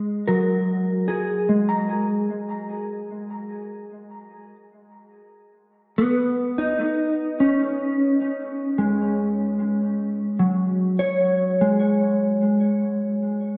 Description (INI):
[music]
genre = ambient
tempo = free time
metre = none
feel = none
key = unclear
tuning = A4 = 440 Hz
[part]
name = mellow electric guitar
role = solo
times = 0.0-13.6 s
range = F#3 to A#5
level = -23 LUFS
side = equal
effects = ensemble chorus, diffuse ambient delay
[sound]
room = wet scoring stage reverb, RT60 1.9 s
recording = dark, warm production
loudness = -22 LUFS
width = mono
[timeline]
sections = 0.0-5.4 A section; 5.4-13.6 B section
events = none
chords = 0.0 F#5